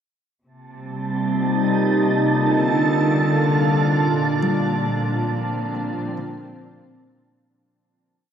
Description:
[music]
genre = ambient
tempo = 68 BPM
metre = 4/4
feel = straight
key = Bb major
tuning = A4 = 440 Hz
[part]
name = rich symphonic cello section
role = bass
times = 0.4-7.5 s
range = Bb2 to D3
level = -34 LUFS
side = left 1 dB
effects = none
[part]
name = analog drone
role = drone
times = 0.9-7.6 s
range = Bb3 to F4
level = -29 LUFS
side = equal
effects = chorus
[part]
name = soft additive organ-like pad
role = sustained chords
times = 0.9-7.5 s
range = Bb2 to A4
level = -20 LUFS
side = equal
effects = ensemble chorus, built-in reverb
[part]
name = wind-like tuned noise texture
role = texture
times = 0.9-7.5 s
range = A5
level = -26 LUFS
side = right 4 dB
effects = built-in reverb
[part]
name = kalimba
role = arpeggios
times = 4.4-8.1 s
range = D3 to D4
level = -29 LUFS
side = left 2 dB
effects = tape echo
[sound]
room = wet huge ambient reverb, RT60 8.4 s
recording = none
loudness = -18 LUFS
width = side -8 dB against mid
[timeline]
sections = 0.4-7.5 A section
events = fade-out on kalimba 0.4-7.5; fade-out on synth drone 0.4-7.5; fade-out 4.0-7.5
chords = 0.4 Cm7; 2.2 Dm; 4.0 Bbmaj9

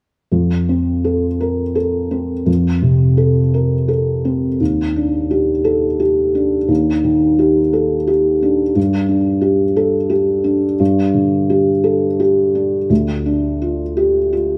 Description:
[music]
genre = neoclassical minimalist piano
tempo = 86 BPM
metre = 3/4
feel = rubato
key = F mixolydian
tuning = A4 = 439 Hz
[part]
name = felt-muted upright piano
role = solo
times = 0.3-14.6 s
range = D2 to Bb4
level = -16 LUFS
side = equal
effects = none
[sound]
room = wet stone room reverb, RT60 1.3 s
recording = band playing live in one room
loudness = -16 LUFS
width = mono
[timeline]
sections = 0.3-14.6 A section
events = none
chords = 0.3 F; 4.6 Ebmaj7#11; 8.8 G5; 12.9 Dm

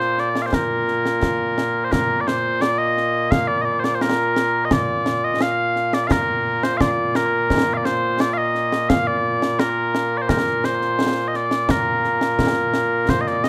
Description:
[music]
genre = scottish traditional, Scottish pipe music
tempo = 86 BPM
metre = 2/4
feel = straight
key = Bb major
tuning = A4 = 439 Hz
[part]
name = mellow small bagpipes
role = melody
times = 0.0-13.5 s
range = Bb2 to F5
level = -21 LUFS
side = equal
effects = slapback echo
[part]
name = concert snare drum and concert bass drum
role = drums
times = 0.0-13.5 s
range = none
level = -25 LUFS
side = equal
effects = none
[sound]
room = light reverb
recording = rough home demo mix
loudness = -20 LUFS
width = mono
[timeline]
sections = 0.0-1.9 A section; 1.9-13.1 A section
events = none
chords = none

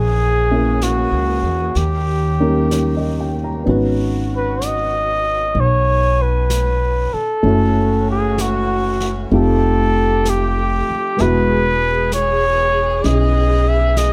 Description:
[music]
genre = jazz ballad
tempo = 64 BPM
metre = 4/4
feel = swing 68% on 8ths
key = G# minor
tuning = A4 = 438 Hz
[part]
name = breathy trumpet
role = melody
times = 0.0-14.1 s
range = F#4 to E5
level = -21 LUFS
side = equal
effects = none
[part]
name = clear saxophone section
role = sustained chords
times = 0.0-14.1 s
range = B2 to G#5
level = -30 LUFS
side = equal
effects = none
[part]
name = upright bass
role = bass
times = 0.0-14.1 s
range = E1 to E2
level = -21 LUFS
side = equal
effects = none
[part]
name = warm upright piano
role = accompaniment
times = 0.5-14.1 s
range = G#3 to A#5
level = -23 LUFS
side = equal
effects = none
[part]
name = jazz brush drum kit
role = drums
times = 0.8-14.1 s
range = brushed snare drum, hi-hat, snare drum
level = -35 LUFS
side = equal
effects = none
[sound]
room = little or no reverb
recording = close, detailed microphones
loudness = -17 LUFS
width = mono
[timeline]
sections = 0.0-3.7 A section; 3.7-14.1 B section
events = none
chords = 0.0 A#m7b5; 1.8 D#7; 3.7 G#m7; 7.4 F#m7; 9.3 F9; 11.2 E

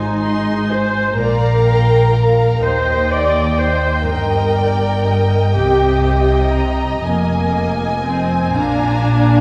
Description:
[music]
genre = classical, slow romantic movement for string orchestra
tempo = 37-42 BPM (dotted quarters)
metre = 6/8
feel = rubato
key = Eb major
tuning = A4 = 442 Hz
[part]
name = rich chamber violin section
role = melody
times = 0.0-9.4 s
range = G5 to C6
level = -29 LUFS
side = equal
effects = none
[part]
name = rich chamber violin section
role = second line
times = 0.0-9.4 s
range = Ab4 to Bb5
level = -25 LUFS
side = equal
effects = none
[part]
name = rich chamber viola section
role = accompaniment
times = 0.0-9.4 s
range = Bb3 to D5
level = -20 LUFS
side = equal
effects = none
[part]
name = rich chamber double bass section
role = bass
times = 0.0-9.4 s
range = F1 to Eb2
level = -22 LUFS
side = equal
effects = none
[part]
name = warm studio cello section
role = bass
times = 0.0-9.4 s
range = Eb2 to C3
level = -22 LUFS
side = equal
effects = none
[sound]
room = wet concert hall reverb, RT60 2.0 s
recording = heard from further back in the room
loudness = -16 LUFS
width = mono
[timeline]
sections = 0.0-9.4 A section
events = none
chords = 0.0 Ab; 1.2 Bb; 2.6 Eb; 4.1 Eb/G; 5.5 Cm7; 7.0 Fm7; 8.5 Bb7

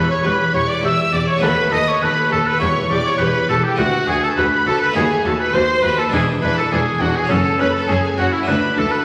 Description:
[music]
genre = classical, baroque-style concerto movement with solo episodes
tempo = 102 BPM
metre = 4/4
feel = straight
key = unclear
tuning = A4 = 440 Hz
[part]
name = clear oboe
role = melody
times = 0.0-9.0 s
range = E4 to E5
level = -22 LUFS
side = equal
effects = none
[part]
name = dark chamber violin section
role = melody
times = 0.0-9.0 s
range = E5 to E6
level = -27 LUFS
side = equal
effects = none
[part]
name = rich chamber violin section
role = second line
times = 0.0-9.0 s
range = E4 to E5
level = -24 LUFS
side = equal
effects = none
[part]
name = harpsichord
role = accompaniment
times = 0.0-9.0 s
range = D2 to G#4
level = -26 LUFS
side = equal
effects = none
[part]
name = clear studio cello section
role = bass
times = 0.0-8.9 s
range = D2 to F#2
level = -28 LUFS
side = equal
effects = none
[part]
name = rich symphonic double bass section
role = bass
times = 0.0-8.9 s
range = E1 to D#2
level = -28 LUFS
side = equal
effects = none
[part]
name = warm studio viola section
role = accompaniment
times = 0.2-8.9 s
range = C#4 to A4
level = -27 LUFS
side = equal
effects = none
[sound]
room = wet recital hall reverb, RT60 1.7 s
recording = vinyl crackle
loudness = -17 LUFS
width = mono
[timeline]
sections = 0.0-9.0 A section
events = none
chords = 0.0 Em; 1.4 B7/D#; 2.6 Em; 3.8 Bm/D; 5.0 D#dim; 6.1 E7; 7.3 F#5; 8.5 Bm/D

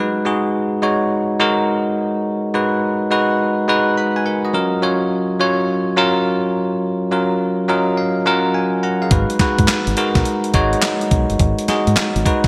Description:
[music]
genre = R&B, new jack swing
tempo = 105 BPM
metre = 4/4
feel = swing 66% on 16ths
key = G# dorian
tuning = A4 = 439 Hz
[part]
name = bell-like tine electric piano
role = accompaniment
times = 0.0-12.5 s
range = F#3 to B5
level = -19 LUFS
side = equal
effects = none
[part]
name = deep dub fingered electric bass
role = bass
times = 9.1-12.5 s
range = G1 to G#2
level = -22 LUFS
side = equal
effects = none
[part]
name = clean 12-bit digital drum machine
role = drums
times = 9.1-12.5 s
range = handclaps, hi-hat, kick drum, snare drum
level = -20 LUFS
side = equal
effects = gated reverb
[sound]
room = wet plate reverb, RT60 2.2 s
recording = bright 1980s-style digital production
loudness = -18 LUFS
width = mono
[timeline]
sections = 0.0-12.5 A section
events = tine electric piano fill 7.4-9.1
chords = 0.0 G#m7; 4.5 F#maj7; 9.1 G#m7

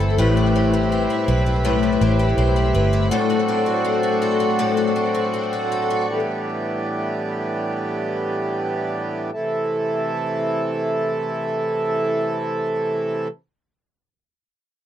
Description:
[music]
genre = dream pop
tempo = 70-82 BPM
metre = 4/4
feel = straight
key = A dorian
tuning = A4 = 439 Hz
[part]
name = pedal harmonium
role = sustained chords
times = 0.0-13.3 s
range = A2 to B4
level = -22 LUFS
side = right 2 dB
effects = none
[part]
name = picked twelve-string acoustic guitar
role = arpeggios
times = 0.0-6.2 s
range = A2 to B4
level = -21 LUFS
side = left 6 dB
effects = ensemble chorus, ping-pong delay
[part]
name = vintage muted fingered electric bass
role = bass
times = 0.0-3.1 s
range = G1 to B1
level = -19 LUFS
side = right 1 dB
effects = none
[part]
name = celesta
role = texture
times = 0.0-0.5 s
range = B5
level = -37 LUFS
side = left 3 dB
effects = none
[sound]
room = moderate booth ambience, RT60 0.2 s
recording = dark, warm production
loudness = -19 LUFS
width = side -10 dB against mid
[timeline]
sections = 0.0-9.3 A section; 9.3-12.8 B section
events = slowing down 3.1-9.3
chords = 0.2 Cmaj7/A; 3.1 D7/A; 6.1 Em7/A; 9.3 Am

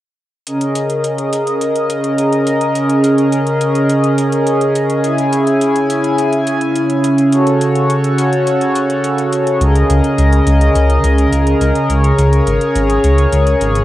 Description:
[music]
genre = synthwave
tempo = 105 BPM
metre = 4/4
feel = straight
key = unclear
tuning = A4 = 438 Hz
[part]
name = chorused pulse-width pad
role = sustained chords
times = 0.5-13.8 s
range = C#3 to G#5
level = -12 LUFS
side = equal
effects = none
[part]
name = electronic hi-hat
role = drums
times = 0.5-13.8 s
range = none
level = -28 LUFS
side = left 1 dB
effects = overdrive, cassette tape
[part]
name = dark detuned saw bass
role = bass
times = 9.6-13.8 s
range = G#1 to C#2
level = -12 LUFS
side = equal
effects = none
[sound]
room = wet studio reverb, RT60 0.6 s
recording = home recording on cassette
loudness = -11 LUFS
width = side -14 dB against mid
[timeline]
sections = 0.5-13.8 A section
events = none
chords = 0.5 G#sus2/C#; 5.0 C#m; 7.3 F#m/C#; 9.6 G#sus2/C#

